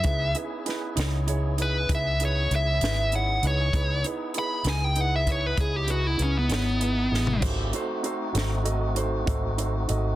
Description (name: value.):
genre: slow blues.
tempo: 65 BPM (dotted quarters).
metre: 12/8.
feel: straight.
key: C# minor.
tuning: A4 = 440 Hz.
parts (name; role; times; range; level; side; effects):
dark smooth lead guitar; melody; 0.0-7.4 s; B3 to B5; -27 LUFS; equal; overdrive.
warm concert grand piano; accompaniment; 0.0-10.1 s; D#4 to D#5; -33 LUFS; right 5 dB; none.
tonewheel organ; sustained chords; 0.0-10.2 s; A3 to G#4; -35 LUFS; left 1 dB; slow rotary speaker, overdrive.
vintage muted fingered electric bass; bass; 0.0-10.2 s; G#1 to C#2; -26 LUFS; equal; none.
compact cocktail drum kit; drums; 0.0-10.0 s; hi-hat, kick drum, snare drum, splash cymbal, toms; -30 LUFS; equal; none.
room: light reverb, small room ambience.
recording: dense, heavily limited modern master.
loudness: -23 LUFS.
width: side -14 dB against mid.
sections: 0.0-10.2 A section.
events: lead electric guitar solo 0.0-10.2; drum fill 7.1-7.4.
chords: 0.0 C#m9; 7.4 G#7b9.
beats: | 0.05 0.97 1.89 2.81 | 3.74 4.66 5.58 6.50 | 7.43 8.35 9.27.